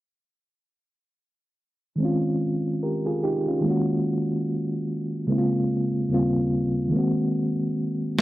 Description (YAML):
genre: R&B, neo-soul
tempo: 73 BPM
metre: 4/4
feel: swing 57% on 16ths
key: unclear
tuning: A4 = 440 Hz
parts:
  - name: mellow reed electric piano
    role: accompaniment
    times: 2.0-8.2 s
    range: Eb2 to Bb4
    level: -22 LUFS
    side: equal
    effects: fast tremolo
  - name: electronic snare drum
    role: drums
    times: 8.2 s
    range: none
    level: -18 LUFS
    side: equal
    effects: none
room: little or no reverb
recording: dry, close 1970s-style studio recording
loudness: -22 LUFS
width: side -16 dB against mid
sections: 2.0-8.2 A section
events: drum fill 7.8-8.2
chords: 2.0 Dbmaj9; 3.6 Ebm11; 5.3 Bbm9; 6.1 Eb13; 6.9 Ab9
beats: | 2.00 2.82 3.64 4.47 | 5.29 6.11 6.93 7.75